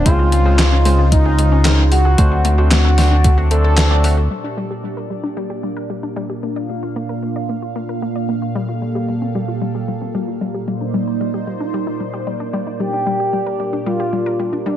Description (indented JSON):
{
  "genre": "synthwave",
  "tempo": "113 BPM",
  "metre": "4/4",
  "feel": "straight",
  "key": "unclear",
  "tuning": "A4 = 439 Hz",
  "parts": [
    { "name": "expressive synth lead", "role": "melody", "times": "0.0-4.2, 12.8-14.8 s", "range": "D4 to A4", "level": "-20 LUFS", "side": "equal", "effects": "chorus, vintage 12-bit sampler grit, ping-pong delay" },
    { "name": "phased analog pad", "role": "sustained chords", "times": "0.0-14.8 s", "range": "Bb2 to F5", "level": "-23 LUFS", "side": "right 1 dB", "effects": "phaser, chorus, sidechain pumping" },
    { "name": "wide unison pluck", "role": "arpeggios", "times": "0.0-14.8 s", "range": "G3 to D5", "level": "-25 LUFS", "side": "left 3 dB", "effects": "ping-pong delay" },
    { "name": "chorused synth bass", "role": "bass", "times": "0.0-4.3 s", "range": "Db2 to D2", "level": "-13 LUFS", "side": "equal", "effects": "none" },
    { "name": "barky tine electric piano", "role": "stabs", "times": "0.1-4.2 s", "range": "Ab3 to F#5", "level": "-26 LUFS", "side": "right 2 dB", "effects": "ping-pong delay" },
    { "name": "electronic kick drum", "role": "drums", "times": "0.1-3.4 s", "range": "none", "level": "-15 LUFS", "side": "equal", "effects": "overdrive" },
    { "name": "gated 80s digital drum machine", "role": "drums", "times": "0.1-14.8 s", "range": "handclaps, hi-hat, snare drum", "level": "-21 LUFS", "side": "equal", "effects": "gated reverb, gated reverb snare, overdrive, low-pass filter on hats, low-pass filter on snare, low-pass filter on room" }
  ],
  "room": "light reverb",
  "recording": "none",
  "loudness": "-15 LUFS",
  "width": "side -11 dB against mid",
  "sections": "0.0-4.3 A section; 4.3-14.8 B section",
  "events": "kick drops out 3.8-4.3; filter sweep on analog synth pad 4.3-14.8; filter sweep on synth arpeggio sound 4.3-14.8",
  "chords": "0.1 Dbmaj7; 2.2 D7; 4.3 Gm/Bb; 6.4 Bb; 8.6 Fadd9/Bb; 10.7 Cmadd9/Bb; 12.8 Gm/Bb",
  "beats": "| 0.06 0.59 1.12 1.65 | 2.18 2.71 3.24 3.77 | 4.31 4.84 5.37 5.90 | 6.43 6.96 7.49 8.02 | 8.55 9.09 9.62 10.15 | 10.68 11.21 11.74 12.27 | 12.80 13.33 13.86 14.39"
}